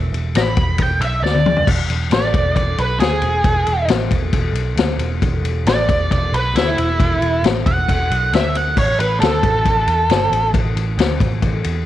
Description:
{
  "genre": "blues rock power trio and southern rock",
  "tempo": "135 BPM",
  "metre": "4/4",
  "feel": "straight",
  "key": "E mixolydian",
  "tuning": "A4 = 440 Hz",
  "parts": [
    { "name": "vintage muted picked electric bass", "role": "bass", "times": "0.0-11.9 s", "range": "E1 to E2", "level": "-20 LUFS", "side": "right 1 dB", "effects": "none" },
    { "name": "vintage drum kit", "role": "drums", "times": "0.1-11.8 s", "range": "crash cymbal, kick drum, ride cymbal, snare drum, toms", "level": "-18 LUFS", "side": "left 3 dB", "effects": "none" },
    { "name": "octave-fuzz lead guitar", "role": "melody", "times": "0.4-10.5 s", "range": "E4 to B5", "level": "-19 LUFS", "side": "right 2 dB", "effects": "wah, distortion, slapback echo" }
  ],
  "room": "light reverb, small room reverb",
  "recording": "1960s-style stereo",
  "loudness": "-14 LUFS",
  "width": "side -13 dB against mid",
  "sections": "0.0-1.7 A section; 1.7-11.9 A section",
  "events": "lead electric guitar solo 0.0-1.7, 1.7-11.9; drum fill 1.2-1.7",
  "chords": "0.0 E5; 1.2 N.C.; 1.7 E5; 8.3 Dadd9; 8.8 A5",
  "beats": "0.36 0.80 1.24 | 1.68 2.12 2.57 3.01 | 3.45 3.89 4.34 4.78 | 5.22 5.67 6.11 6.55 | 7.00 7.44 7.88 8.33 | 8.77 9.21 9.66 10.10 | 10.54 10.99 11.43"
}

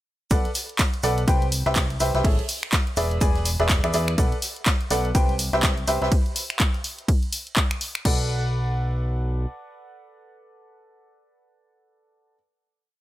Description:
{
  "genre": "piano house",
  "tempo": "124 BPM",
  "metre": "4/4",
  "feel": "swing 59% on 16ths",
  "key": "unclear",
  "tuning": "A4 = 441 Hz",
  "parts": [
    { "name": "clear upright piano", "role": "riff", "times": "0.3-12.3 s", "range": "G4 to G#5", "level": "-26 LUFS", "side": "equal", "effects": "sidechain pumping, dub echo" },
    { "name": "fat analog bass", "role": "bass", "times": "0.3-9.5 s", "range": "E1 to E2", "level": "-25 LUFS", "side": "equal", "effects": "tube saturation, sidechain pumping" },
    { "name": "electronic kick drum", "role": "drums", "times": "0.3-8.2 s", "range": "none", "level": "-22 LUFS", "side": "equal", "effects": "none" },
    { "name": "punchy analog drum machine", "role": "drums", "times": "0.3-8.2 s", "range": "crash cymbal, finger snaps, handclaps, hi-hat, ride cymbal", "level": "-27 LUFS", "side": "equal", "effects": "none" },
    { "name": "soft-mallet drum kit", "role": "drums", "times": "0.3-6.1 s", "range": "hi-hat, shaker, snare drum", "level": "-35 LUFS", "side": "right 2 dB", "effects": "sidechain pumping on hats, high-pass filter on hats, high-pass filter on snare, sidechain pumping on perc, high-pass filter on perc, high-pass filter on room" }
  ],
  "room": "studio reverb",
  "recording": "none",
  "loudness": "-20 LUFS",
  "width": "side -15 dB against mid",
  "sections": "0.3-8.1 drop; 8.1-11.9 final chord",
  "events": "drop 0.3-8.1",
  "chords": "0.3 Bm7; 1.3 Cmaj7; 2.2 Amaj7; 3.0 E7; 4.2 Bm7; 5.1 Cmaj7; 6.1 N.C.; 8.1 Bm7",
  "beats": "| 0.31 0.79 1.28 1.76 | 2.25 2.73 3.21 3.70 | 4.18 4.66 5.15 5.63 | 6.12 6.60 7.08 7.57 | 8.05 8.54 9.02 9.50 | 9.99 10.47 10.95 11.44"
}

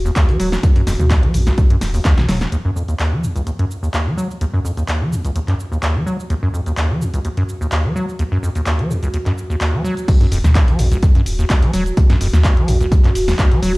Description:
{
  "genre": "acid house",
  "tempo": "127 BPM",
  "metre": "4/4",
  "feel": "swing 53% on 16ths",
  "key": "Eb minor",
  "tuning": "A4 = 440 Hz",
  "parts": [
    { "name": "dark analog pad", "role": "sustained chords", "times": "0.0-13.8 s", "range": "Gb4", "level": "-28 LUFS", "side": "right 1 dB", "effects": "chorus, phaser, sidechain pumping" },
    { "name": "warm sub bass", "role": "bass", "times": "0.0-2.5, 10.3-13.8 s", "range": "Eb1 to Eb2", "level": "-17 LUFS", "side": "equal", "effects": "sidechain pumping" },
    { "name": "acid bass, square", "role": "riff", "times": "0.1-13.7 s", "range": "Db2 to Gb3", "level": "-18 LUFS", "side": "equal", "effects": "tube saturation, cassette tape, sidechain pumping" },
    { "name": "dusty soul sampler-style drum kit", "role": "drums", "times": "0.1-2.5, 10.1-13.7 s", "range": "hi-hat, snare drum, tambourine", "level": "-38 LUFS", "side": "left 1 dB", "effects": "none" },
    { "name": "punchy analog drum machine", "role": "drums", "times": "0.1-13.8 s", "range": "crash cymbal, handclaps, hi-hat, shaker, snare drum, toms", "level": "-24 LUFS", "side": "equal", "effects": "none" },
    { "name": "electronic kick drum", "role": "drums", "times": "0.2-2.2, 10.1-13.5 s", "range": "none", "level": "-14 LUFS", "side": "equal", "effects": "none" }
  ],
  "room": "light reverb",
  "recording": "played on a big sound system in a bare room, stone room reverb",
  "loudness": "-14 LUFS",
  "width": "side -23 dB against mid",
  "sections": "0.0-2.5 A section; 2.5-10.1 B section; 10.1-13.8 C section",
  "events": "filter sweep on acid bass 0.0-2.5; drum fill 1.8-2.5; drop 10.1-13.8",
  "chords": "0.0 Ebm",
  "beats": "0.16 | 0.63 1.10 1.58 2.05 | 2.52 3.00 3.47 3.94 | 4.41 4.88 5.36 5.83 | 6.30 6.77 7.25 7.72 | 8.19 8.66 9.14 9.61 | 10.08 10.55 11.03 11.50 | 11.97 12.44 12.92 13.39"
}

